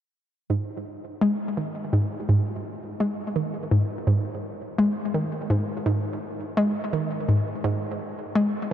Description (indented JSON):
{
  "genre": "ambient",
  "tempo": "84 BPM",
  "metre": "4/4",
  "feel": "straight",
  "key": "unclear",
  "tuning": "A4 = 440 Hz",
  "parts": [
    { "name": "hollow square pluck", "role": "solo", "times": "0.5-8.6 s", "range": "G#2 to G#3", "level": "-23 LUFS", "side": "equal", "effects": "chorus, tape echo" }
  ],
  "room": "moderate huge ambient reverb, RT60 8.5 s",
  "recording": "dark, warm production",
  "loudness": "-23 LUFS",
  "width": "side -10 dB against mid",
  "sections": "0.5-8.7 A section",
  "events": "none",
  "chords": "none"
}